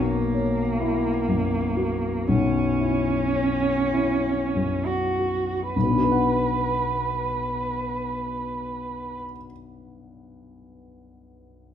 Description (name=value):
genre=classical, slow romantic movement for piano trio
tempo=30-44 BPM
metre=4/4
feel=rubato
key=B minor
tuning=A4 = 440 Hz
part: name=muted cello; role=second line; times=0.0-9.1 s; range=A#3 to B4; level=-25 LUFS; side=right 4 dB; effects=none
part: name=dark grand piano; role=accompaniment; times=0.0-11.7 s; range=B1 to F#5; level=-24 LUFS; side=left 3 dB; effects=none
room=wet recital hall reverb, RT60 1.3 s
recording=minimal, uncompressed stereo recording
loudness=-22 LUFS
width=side -9 dB against mid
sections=0.0-5.7 A section; 5.7-11.7 B section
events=slowing down 0.0-5.7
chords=0.0 F#7/B; 5.7 Bm